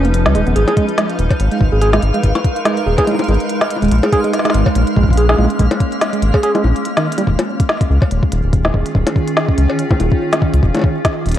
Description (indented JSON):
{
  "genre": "IDM",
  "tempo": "143 BPM",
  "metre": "4/4",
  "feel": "swing 56% on 16ths",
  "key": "unclear",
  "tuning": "A4 = 439 Hz",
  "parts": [
    { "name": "granular cloud pad", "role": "sustained chords", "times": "0.0-11.4 s", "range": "Eb3 to Cb5", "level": "-20 LUFS", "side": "equal", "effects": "built-in reverb" },
    { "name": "tine electric piano", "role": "arpeggios", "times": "0.0-7.2 s", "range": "Eb3 to Ab4", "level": "-19 LUFS", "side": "right 3 dB", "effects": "medium tremolo, digital delay" },
    { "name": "round analog bass", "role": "bass", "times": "0.0-11.3 s", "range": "Eb1 to Db2", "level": "-14 LUFS", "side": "equal", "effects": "none" },
    { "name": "organic electronic drum kit", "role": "drums", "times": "0.0-11.4 s", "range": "bongos, cowbell, hi-hat, snare drum", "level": "-20 LUFS", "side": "left 2 dB", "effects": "none" },
    { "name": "twinkling granular texture", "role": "texture", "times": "1.1-7.3 s", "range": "F5", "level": "-28 LUFS", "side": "right 2 dB", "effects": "built-in reverb" },
    { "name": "electronic kick drum", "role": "drums", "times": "0.8-11.1 s", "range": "none", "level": "-15 LUFS", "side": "equal", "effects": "overdrive" }
  ],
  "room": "light reverb, digital ambience",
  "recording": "worn, warbling old tape, cassette tape, warbly pitch drift",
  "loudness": "-12 LUFS",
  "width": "side -11 dB against mid",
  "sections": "0.0-7.3 A section; 7.3-11.4 A section",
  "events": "break 6.9-7.3; drum fill 7.1",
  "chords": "0.0 Db7; 0.6 Abmadd9; 3.9 Bbm7; 7.3 Eb9sus4; 10.6 Db7"
}